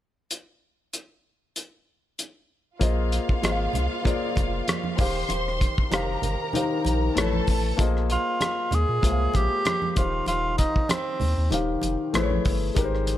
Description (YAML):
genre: lush 1970s-style soul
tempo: 96 BPM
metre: 4/4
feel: swing 54% on 16ths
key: unclear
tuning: A4 = 443 Hz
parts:
  - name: cloth-damped thuddy drum kit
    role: drums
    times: 0.3-13.2 s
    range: hi-hat, kick drum, rim click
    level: -26 LUFS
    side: equal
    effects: none
  - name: warm studio string section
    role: second line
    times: 2.8-7.8 s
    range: F4 to C6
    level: -31 LUFS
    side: right 1 dB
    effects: none
  - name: warm concert grand piano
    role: accompaniment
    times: 2.8-13.2 s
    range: Eb3 to F5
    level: -28 LUFS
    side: left 4 dB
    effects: none
  - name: warm sub bass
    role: bass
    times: 2.8-13.1 s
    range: Eb1 to Bb2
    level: -27 LUFS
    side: equal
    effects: none
  - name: congas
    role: percussion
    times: 2.8-13.2 s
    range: none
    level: -34 LUFS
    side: right 5 dB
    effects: none
  - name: breathy tenor saxophone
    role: melody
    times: 8.1-11.5 s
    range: C4 to Ab4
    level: -26 LUFS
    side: right 1 dB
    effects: none
room: light reverb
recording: none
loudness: -22 LUFS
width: side -12 dB against mid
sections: 0.3-2.8 A section; 2.8-7.8 B section; 7.8-13.2 C section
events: none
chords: 0.3 N.C.; 2.8 Bb9sus4; 5.0 Eb69; 7.2 Aadd9; 7.8 Bb9sus4; 10.0 Eb69; 12.1 Amaj9